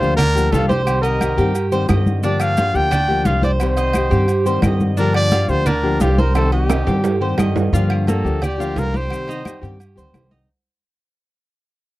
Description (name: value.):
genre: latin, Cuban son and guajira.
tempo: 175 BPM.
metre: 4/4.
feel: straight.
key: G minor.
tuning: A4 = 437 Hz.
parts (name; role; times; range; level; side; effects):
warm trumpet; melody; 0.0-9.6 s; G4 to G5; -21 LUFS; equal; none.
nylon-string guitar; accompaniment; 0.0-10.5 s; C3 to G4; -23 LUFS; left 4 dB; none.
Cuban tres; arpeggios; 0.0-10.5 s; Bb3 to Eb5; -25 LUFS; right 2 dB; none.
upright bass; bass; 0.0-10.4 s; C2 to G2; -19 LUFS; equal; none.
congas; percussion; 0.0-10.5 s; none; -23 LUFS; left 1 dB; none.
maracas; percussion; 0.0-10.5 s; none; -38 LUFS; left 6 dB; none.
agogo bells and timbales; percussion; 0.2-10.3 s; none; -27 LUFS; right 5 dB; none.
claves; percussion; 0.2-10.3 s; none; -33 LUFS; left 6 dB; none.
room: light reverb.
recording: dry, close 1970s-style studio recording.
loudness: -15 LUFS.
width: side -17 dB against mid.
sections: 0.0-7.7 A section; 7.7-10.5 B section.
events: drum fill 6.4-7.7; fade-out 7.7-10.5.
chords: 0.0 Gm7; 0.9 Cm; 2.2 Gm7; 3.6 Cm; 5.0 Gm7; 6.4 Cm; 7.7 Gm7; 9.1 Cm.